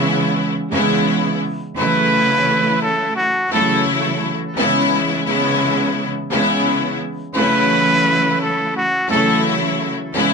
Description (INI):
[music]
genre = hip hop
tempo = 86 BPM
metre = 4/4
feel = swing 61% on 16ths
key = F# minor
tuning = A4 = 441 Hz
[part]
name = bright studio string section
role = accompaniment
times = 0.0-10.3 s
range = C#3 to E4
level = -16 LUFS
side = equal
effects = none
[part]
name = trumpet with straight mute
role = melody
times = 1.8-9.4 s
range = F#4 to B4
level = -18 LUFS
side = right 1 dB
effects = tape echo
[sound]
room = moderate small room reverb, RT60 0.5 s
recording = nothing above 10.5 kHz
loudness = -15 LUFS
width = side -5 dB against mid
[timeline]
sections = 0.0-10.3 A section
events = none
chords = 0.0 C#m7; 1.8 F#m7; 4.6 C#m7; 7.4 F#m7